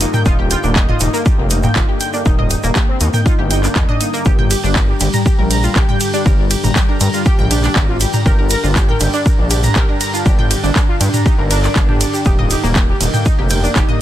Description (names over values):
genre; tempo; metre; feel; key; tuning
melodic techno; 120 BPM; 4/4; straight; G minor; A4 = 440 Hz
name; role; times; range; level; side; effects
analog synth brass; melody; 0.0-14.0 s; G3 to Bb4; -22 LUFS; left 1 dB; chorus, sidechain pumping, dub echo
analog pluck; arpeggios; 0.0-14.0 s; Bb3 to Bb6; -22 LUFS; equal; chorus, sidechain pumping, ping-pong delay
gritty driven synth bass; bass; 0.0-13.8 s; Eb1 to G2; -17 LUFS; equal; sidechain pumping
analog drone; drone; 0.0-14.0 s; G2 to D3; -27 LUFS; left 2 dB; none
techno drum kit; drums; 0.0-14.0 s; handclaps, hi-hat, ride cymbal, toms; -20 LUFS; right 1 dB; overdrive
egg shaker; percussion; 0.0-13.9 s; none; -26 LUFS; right 3 dB; none
electronic kick drum; drums; 0.3-13.9 s; none; -14 LUFS; equal; overdrive
room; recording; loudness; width
little or no reverb; dense, heavily limited modern master; -12 LUFS; side -12 dB against mid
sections
0.0-14.0 A section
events
none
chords
0.0 Eb; 4.3 Gm; 12.3 Ebadd9